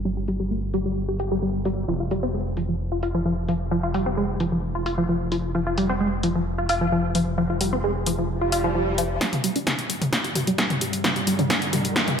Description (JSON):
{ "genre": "driving peak-time techno", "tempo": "131 BPM", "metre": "4/4", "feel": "straight", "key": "unclear", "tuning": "A4 = 435 Hz", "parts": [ { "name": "gritty driven synth bass", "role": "bass", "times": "0.0-9.2 s", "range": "F1 to G1", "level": "-28 LUFS", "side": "equal", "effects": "sidechain pumping" }, { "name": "tight sequenced synth", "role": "riff", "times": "0.1-12.1 s", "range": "F3 to G4", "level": "-24 LUFS", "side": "equal", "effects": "chorus, phaser, sidechain pumping, ping-pong delay" }, { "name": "punchy analog drum machine", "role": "drums", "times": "0.3-12.2 s", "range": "hi-hat, snare drum, toms", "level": "-23 LUFS", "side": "left 1 dB", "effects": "overdrive, sidechain pumping on cymbals, sidechain pumping on hats, sidechain pumping on toms, gated reverb" }, { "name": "swell and riser", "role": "sound effects", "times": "8.4-12.2 s", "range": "none", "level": "-32 LUFS", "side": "right 1 dB", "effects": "none" }, { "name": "metallic inharmonic drone", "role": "drone", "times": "10.3-12.2 s", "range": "G2 to G3", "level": "-30 LUFS", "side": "equal", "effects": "chorus, built-in reverb, sidechain pumping" }, { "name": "electronic kick drum", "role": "drums", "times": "9.2-12.1 s", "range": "none", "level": "-33 LUFS", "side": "equal", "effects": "overdrive, high-pass filter on kick" } ], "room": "wet lush hall reverb, RT60 1.8 s", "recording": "bright 1980s-style digital production, low-pass filter", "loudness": "-21 LUFS", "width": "side -7 dB against mid", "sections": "0.0-9.2 A section; 9.2-12.2 B section", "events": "filter sweep on synth arpeggio sound 0.0-9.2; filter sweep 0.0-9.2; swell 8.4-9.2; build-up 9.2-12.2; drum fill 9.2-12.2", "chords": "none" }